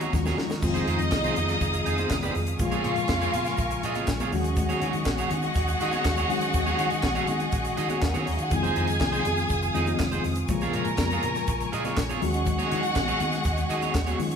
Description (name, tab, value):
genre	disco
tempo	122 BPM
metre	4/4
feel	straight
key	Eb dorian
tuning	A4 = 440 Hz
part	warm studio violin section	second line	0.0-14.2 s	Bb3 to Bb5	-30 LUFS	equal	none
part	electric guitar at the edge of break-up	accompaniment	0.0-14.4 s	Eb4 to Eb5	-32 LUFS	right 3 dB	none
part	mellow tine electric piano	accompaniment	0.0-14.4 s	C3 to Gb4	-30 LUFS	left 3 dB	medium stereo tremolo
part	clear studio string section	sustained chords	0.0-14.4 s	Gb3 to Eb6	-32 LUFS	left 1 dB	none
part	picked electric bass with an envelope filter	bass	0.0-14.4 s	F1 to Eb3	-30 LUFS	right 1 dB	none
part	tight funk drum kit	drums	0.0-14.4 s	crash cymbal, handclaps, hi-hat, kick drum, snare drum	-31 LUFS	equal	none
part	congas	percussion	0.0-14.2 s	none	-38 LUFS	left 3 dB	none
part	tube shaker	percussion	0.0-14.4 s	none	-46 LUFS	right 6 dB	none
room	wet large studio reverb, RT60 1.3 s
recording	band playing live in one room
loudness	-23 LUFS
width	side -7 dB against mid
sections	0.6-14.4 A section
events	drum fill 0.1-0.6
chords	0.0 Ebm11; 0.6 Fm7; 2.6 Bbm7; 4.3 Ebm11; 8.5 Fm7; 10.5 Bbm7; 12.2 Ebm11